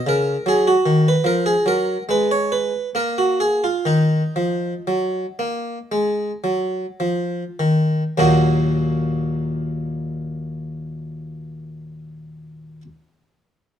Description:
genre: classical, baroque-style suite movement for harpsichord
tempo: 50-78 BPM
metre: 4/4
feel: rubato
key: Eb minor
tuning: A4 = 442 Hz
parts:
  - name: harpsichord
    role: solo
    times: 0.0-12.8 s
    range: Eb2 to Db5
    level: -18 LUFS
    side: equal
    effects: none
room: moderate stone room reverb, RT60 1.0 s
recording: dark, warm production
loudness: -18 LUFS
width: side -9 dB against mid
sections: 0.0-8.2 A section; 8.2-12.9 B section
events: slowing down 0.0-8.2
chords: 0.5 Ebmadd9; 2.1 N.C.; 3.9 Ebm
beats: | 0.47 1.25 2.07 2.93 | 3.86 4.86 5.90 7.00 | 8.18 9.37 10.55 11.73

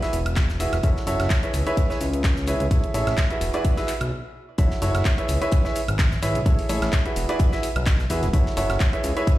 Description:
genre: piano house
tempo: 128 BPM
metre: 4/4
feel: swing 54% on 16ths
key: F# minor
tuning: A4 = 439 Hz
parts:
  - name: clear baby grand piano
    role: riff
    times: 0.0-9.4 s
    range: E4 to E5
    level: -26 LUFS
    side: right 1 dB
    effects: sidechain pumping, ping-pong delay
  - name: garage drum kit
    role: drums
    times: 0.0-9.4 s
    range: cabasa, handclaps, hi-hat, woodblock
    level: -31 LUFS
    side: equal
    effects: none
  - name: modern studio drum kit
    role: drums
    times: 0.0-9.4 s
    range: hi-hat, snare drum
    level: -40 LUFS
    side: left 2 dB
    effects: sidechain pumping on hats, high-pass filter on hats, high-pass filter on snare, high-pass filter on room
  - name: fat analog bass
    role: bass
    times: 0.1-9.1 s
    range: D1 to E2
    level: -24 LUFS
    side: equal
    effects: tube saturation, sidechain pumping
  - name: electronic kick drum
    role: drums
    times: 0.4-9.4 s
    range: none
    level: -20 LUFS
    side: equal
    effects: none
room: studio reverb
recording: played on a big sound system in a bare room, stone room reverb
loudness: -20 LUFS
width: side -16 dB against mid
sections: 0.0-4.6 A section; 4.6-9.4 B section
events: stop 4.1-4.6; drop 4.6-9.4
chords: 0.0 Eadd9; 0.8 F#m7; 1.5 C#m7; 2.7 Amaj7; 3.4 Eadd9; 4.6 F#m7; 5.3 C#m7; 6.5 Amaj7; 7.2 Eadd9; 8.3 F#m7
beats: 0.37 | 0.83 1.30 1.77 2.24 | 2.71 3.18 3.65 4.12 | 4.58 5.05 5.52 5.99 | 6.46 6.93 7.40 7.87 | 8.33 8.80 9.27

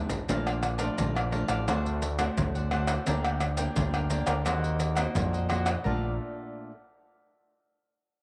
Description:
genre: samba and choro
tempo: 86 BPM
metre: 4/4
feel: straight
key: Bb major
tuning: A4 = 440 Hz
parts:
  - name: nylon-string guitar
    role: accompaniment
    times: 0.0-6.7 s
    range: F2 to G4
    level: -37 LUFS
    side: equal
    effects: none
  - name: maracas, surdo, pandeiro and tamborim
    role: percussion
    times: 0.1-6.0 s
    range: none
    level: -33 LUFS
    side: equal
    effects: none
  - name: cavaquinho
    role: accompaniment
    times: 0.3-6.1 s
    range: D4 to A5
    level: -39 LUFS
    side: equal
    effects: none
  - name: growling fingered electric bass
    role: bass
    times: 0.3-6.2 s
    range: A1 to F2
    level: -32 LUFS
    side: equal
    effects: overdrive
room: moderate spring reverb, RT60 2.5 s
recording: none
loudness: -29 LUFS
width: mono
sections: 0.3-5.9 A section; 5.9-8.2 B section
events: drum fill 0.0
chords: 0.3 Bbmaj7; 1.7 D7; 3.1 Gm/D; 4.5 Ebm6; 5.9 Bbmaj7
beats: | 0.29 0.98 1.68 2.38 | 3.07 3.77 4.46 5.16 | 5.85 6.55

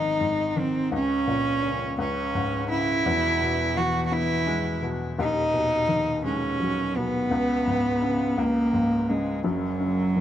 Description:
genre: pop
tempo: 56 BPM (dotted quarters)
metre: 6/8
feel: straight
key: unclear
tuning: A4 = 440 Hz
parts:
  - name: warm cello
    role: melody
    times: 0.0-10.2 s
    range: F#3 to F#4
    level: -24 LUFS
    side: right 1 dB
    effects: none
  - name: warm upright piano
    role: accompaniment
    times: 0.0-10.2 s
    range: D#1 to B3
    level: -27 LUFS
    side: left 2 dB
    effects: none
room: light reverb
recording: none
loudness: -22 LUFS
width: side -11 dB against mid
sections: 0.0-10.2 A section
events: none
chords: 0.0 G#; 0.9 A#m/C#; 2.0 C#5; 3.1 E; 5.2 B6/D#; 7.3 C#5; 9.4 F#5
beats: | 0.93 1.99 | 3.05 4.12 | 5.18 6.24 | 7.31 8.37 | 9.44

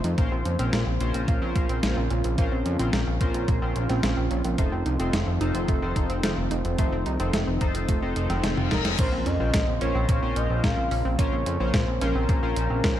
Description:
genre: synthwave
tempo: 109 BPM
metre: 4/4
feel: straight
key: Bb harmonic minor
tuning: A4 = 437 Hz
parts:
  - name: warm analog pad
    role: sustained chords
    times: 0.0-13.0 s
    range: Db3 to C5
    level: -32 LUFS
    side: equal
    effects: wide subtle chorus, sidechain pumping
  - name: analog pluck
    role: arpeggios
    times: 0.0-13.0 s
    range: A3 to Eb4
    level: -32 LUFS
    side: right 4 dB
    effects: chorus, cassette tape, ping-pong delay
  - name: fat analog bass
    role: bass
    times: 0.0-13.0 s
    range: F1 to F2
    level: -27 LUFS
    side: equal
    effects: sidechain pumping
  - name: detuned 8-bit digital drum machine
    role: drums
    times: 0.0-12.9 s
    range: crash cymbal, hi-hat, snare drum, toms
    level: -30 LUFS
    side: equal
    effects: none
  - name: chorused polysynth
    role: stabs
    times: 0.2-13.0 s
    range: Db4 to Eb5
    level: -32 LUFS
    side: left 2 dB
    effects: ping-pong delay
  - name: electronic kick drum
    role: drums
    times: 0.2-12.9 s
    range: none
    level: -25 LUFS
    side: equal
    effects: none
  - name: reverse cymbal and impact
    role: sound effects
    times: 8.3-11.2 s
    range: none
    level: -35 LUFS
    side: left 2 dB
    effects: none
  - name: expressive synth lead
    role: melody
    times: 8.7-13.0 s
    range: Bb4 to F5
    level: -30 LUFS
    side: equal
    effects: chorus, ping-pong delay
room: light reverb, digital ambience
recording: dark, warm production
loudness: -22 LUFS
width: side -12 dB against mid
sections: 0.0-9.0 A section; 9.0-13.0 B section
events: reverse cymbal 8.3-9.0; drum fill 8.6-9.0; impact 9.0-11.2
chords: 0.2 Bbmadd9; 4.6 F7; 9.0 Bbmadd9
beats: | 0.18 0.73 1.28 1.83 | 2.38 2.93 3.48 4.03 | 4.58 5.13 5.68 6.24 | 6.79 7.33 7.89 8.44 | 8.99 9.54 10.09 10.64 | 11.19 11.74 12.29 12.84

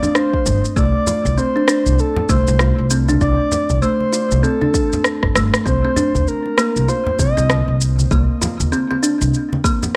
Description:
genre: organic downtempo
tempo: 98 BPM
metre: 4/4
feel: swing 59% on 16ths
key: unclear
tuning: A4 = 440 Hz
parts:
  - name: breathy flute-like synth lead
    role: melody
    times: 0.0-7.8 s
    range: A4 to Eb5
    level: -24 LUFS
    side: equal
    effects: chorus, tremolo, analog delay
  - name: kalimba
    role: arpeggios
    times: 0.0-9.9 s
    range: D3 to F4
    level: -22 LUFS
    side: equal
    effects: low-pass filter, tape echo
  - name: electronic shaker and rim click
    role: drums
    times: 0.0-9.9 s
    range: none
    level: -22 LUFS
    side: equal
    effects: small room ambience
  - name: congas and bongos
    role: percussion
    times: 0.0-9.9 s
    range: none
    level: -28 LUFS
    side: equal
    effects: none
  - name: electronic kick drum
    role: drums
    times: 0.3-9.8 s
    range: none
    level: -23 LUFS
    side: equal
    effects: small room ambience
  - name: upright bass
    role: bass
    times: 0.5-9.3 s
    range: G1 to Eb2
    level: -20 LUFS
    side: equal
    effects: tube saturation, sidechain pumping
room: studio reverb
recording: dry, gritty hardware recording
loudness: -17 LUFS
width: mono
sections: 0.0-10.0 A section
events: filter sweep on kalimba 0.0-10.0; drum fill 5.2-5.7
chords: 0.0 D7(no3); 5.7 C7(no3)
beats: 0.15 | 0.77 1.38 1.99 2.60 | 3.21 3.83 4.44 5.05 | 5.66 6.28 6.89 7.50 | 8.11 8.72 9.34

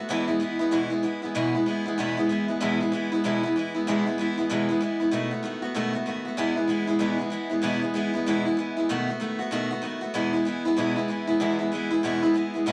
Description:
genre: rock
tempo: 191 BPM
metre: 4/4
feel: swing 62% on 8ths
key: E major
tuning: A4 = 439 Hz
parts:
  - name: picked steel-string acoustic guitar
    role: solo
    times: 0.0-12.7 s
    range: E2 to F#4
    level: -26 LUFS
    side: equal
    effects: none
room: moderate club reverb, RT60 0.7 s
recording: vinyl crackle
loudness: -26 LUFS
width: mono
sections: 0.0-1.4 A section; 1.4-11.4 A section; 11.4-12.7 B section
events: none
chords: 0.1 E; 5.1 B7; 6.4 E; 8.9 B7; 10.2 E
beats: | 0.09 0.41 0.72 1.03 | 1.35 1.66 1.98 2.29 | 2.61 2.92 3.24 3.55 | 3.86 4.18 4.49 4.81 | 5.12 5.43 5.75 6.06 | 6.38 6.69 7.01 7.32 | 7.63 7.95 8.26 8.58 | 8.89 9.21 9.52 9.84 | 10.15 10.47 10.78 11.10 | 11.41 11.72 12.04 12.35 | 12.67

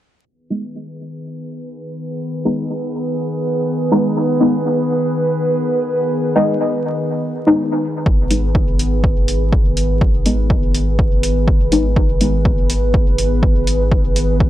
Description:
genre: dub techno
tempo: 123 BPM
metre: 4/4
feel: swing 55% on 16ths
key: G# minor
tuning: A4 = 439 Hz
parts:
  - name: warbly tape-like pad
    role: sustained chords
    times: 1.0-14.5 s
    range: D#3 to B4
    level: -20 LUFS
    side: equal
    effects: chorus, built-in reverb, sidechain pumping
  - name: deep mellow chord stab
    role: stabs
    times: 0.5-12.3 s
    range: G#3 to D#4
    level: -18 LUFS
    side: left 1 dB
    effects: chorus, phaser, cassette tape, sidechain pumping, dub echo
  - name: soft dub sub bass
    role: bass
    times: 8.1-14.5 s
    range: G#1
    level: -19 LUFS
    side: equal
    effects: transformer saturation, sidechain pumping
  - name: electronic kick drum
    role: drums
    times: 8.1-14.5 s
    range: none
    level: -16 LUFS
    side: equal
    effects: overdrive
  - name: electronic hi-hat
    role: drums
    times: 8.3-14.3 s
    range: none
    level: -24 LUFS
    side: equal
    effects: none
room: little or no reverb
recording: dry, gritty hardware recording, vinyl crackle, low-pass filter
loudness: -14 LUFS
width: side -13 dB against mid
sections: 0.3-8.1 A section; 8.1-14.5 B section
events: filter sweep on synth stab 0.3-8.1, 8.1-14.5; filter sweep 0.3-8.1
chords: 0.3 G#m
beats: | 0.26 0.74 1.23 1.72 | 2.21 2.70 3.18 3.67 | 4.16 4.65 5.14 5.62 | 6.11 6.60 7.09 7.58 | 8.06 8.55 9.04 9.53 | 10.01 10.50 10.99 11.48 | 11.96 12.45 12.94 13.43 | 13.92 14.40

